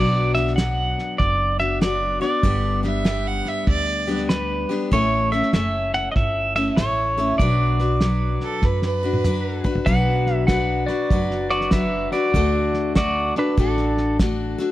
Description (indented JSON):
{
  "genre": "honky-tonk and classic country",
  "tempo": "97 BPM",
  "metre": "4/4",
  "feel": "swing 64% on 8ths",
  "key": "B minor",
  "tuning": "A4 = 441 Hz",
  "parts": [
    { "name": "pedal steel guitar", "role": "melody", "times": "0.0-14.2 s", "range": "D4 to F#5", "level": "-23 LUFS", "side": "right 1 dB", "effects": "none" },
    { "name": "picked steel-string acoustic guitar", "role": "accompaniment", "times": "0.0-14.7 s", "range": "G2 to B4", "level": "-24 LUFS", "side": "left 3 dB", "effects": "none" },
    { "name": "upright bass", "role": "bass", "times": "0.0-14.5 s", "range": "F#1 to F#2", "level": "-25 LUFS", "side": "equal", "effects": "none" },
    { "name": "cloth-damped thuddy drum kit", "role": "drums", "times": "0.4-14.6 s", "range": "hi-hat, kick drum, snare drum, toms", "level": "-22 LUFS", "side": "equal", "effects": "none" },
    { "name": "warm fiddle", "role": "second line", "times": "2.9-4.2, 8.4-9.7 s", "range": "A4 to F#5", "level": "-27 LUFS", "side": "right 4 dB", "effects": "none" }
  ],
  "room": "light reverb",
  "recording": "none",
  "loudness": "-18 LUFS",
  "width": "side -15 dB against mid",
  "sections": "0.0-9.9 A section; 9.9-14.7 B section",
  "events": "drum fill 8.6-9.9",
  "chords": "0.0 Bm; 2.4 G; 4.9 A; 7.4 Bm; 12.3 D"
}